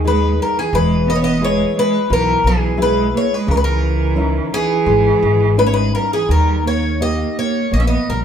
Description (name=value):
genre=fado-style ballad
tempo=86 BPM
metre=4/4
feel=rubato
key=unclear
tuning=A4 = 440 Hz
part: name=picked twelve-string acoustic guitar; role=melody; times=0.0-8.2 s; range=G#4 to E5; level=-18 LUFS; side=left 2 dB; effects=none
part: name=nylon-string guitar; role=accompaniment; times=0.0-8.2 s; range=B2 to B4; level=-22 LUFS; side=left 1 dB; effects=none
part: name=upright bass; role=bass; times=0.0-8.2 s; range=E1 to D#2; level=-18 LUFS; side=equal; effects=none
part: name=rich cello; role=second line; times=0.1-8.2 s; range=E3 to C#4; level=-21 LUFS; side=right 6 dB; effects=none
room=moderate large studio reverb, RT60 1.1 s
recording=band playing live in one room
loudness=-14 LUFS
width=side -8 dB against mid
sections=0.0-8.2 A section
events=none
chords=0.0 G#m; 0.7 E; 3.5 C#madd9; 6.3 D#